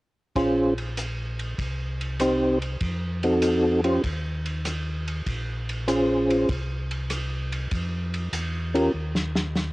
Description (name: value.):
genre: soul jazz organ trio.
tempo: 98 BPM.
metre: 4/4.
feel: swing 69% on 8ths.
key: unclear.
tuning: A4 = 438 Hz.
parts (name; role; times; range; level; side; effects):
percussive tonewheel organ; melody; 0.4-8.9 s; C4 to C5; -21 LUFS; equal; slow rotary speaker, chorus vibrato, cassette tape.
mellow tonewheel organ; bass; 0.4-9.7 s; Bb1 to F2; -29 LUFS; equal; slow rotary speaker.
warm soul drum kit; drums; 0.4-9.7 s; hi-hat, kick drum, ride cymbal, rim click, snare drum; -31 LUFS; equal; cassette tape.
room: light reverb, small room reverb.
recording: home recording on cassette.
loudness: -23 LUFS.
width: side -20 dB against mid.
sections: 0.4-9.7 A section.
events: drum fill 8.9-9.5.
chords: 0.4 Bbm9; 1.6 Cm; 2.8 F7b9; 4.0 N.C.; 5.3 Bbm9; 6.5 N.C..